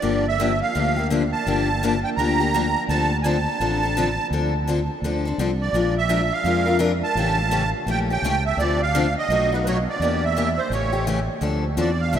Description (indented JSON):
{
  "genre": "acoustic string swing (jazz manouche)",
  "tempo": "168 BPM",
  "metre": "4/4",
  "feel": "swing 62% on 8ths",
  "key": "D minor",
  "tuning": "A4 = 440 Hz",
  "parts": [
    { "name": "musette accordion", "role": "melody", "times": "0.0-12.2 s", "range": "B4 to Bb5", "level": "-23 LUFS", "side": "right 4 dB", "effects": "none" },
    { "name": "picked steel-string acoustic guitar", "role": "accompaniment", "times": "0.0-12.2 s", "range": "B2 to Bb4", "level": "-24 LUFS", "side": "left 4 dB", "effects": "none" },
    { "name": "fretless electric bass", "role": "bass", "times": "0.0-12.2 s", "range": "G1 to F2", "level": "-24 LUFS", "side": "equal", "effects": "analog chorus" }
  ],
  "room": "wet cathedral reverb, RT60 6.0 s",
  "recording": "in a vast, echoing space",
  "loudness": "-19 LUFS",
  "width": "side -9 dB against mid",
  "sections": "0.0-11.4 A section",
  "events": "none",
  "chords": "0.0 Gm9; 2.9 Dm7; 5.7 Bb7; 7.2 A7; 8.6 Dm7; 9.3 B7; 10.0 Em7b5; 10.7 A7; 11.4 Dm9"
}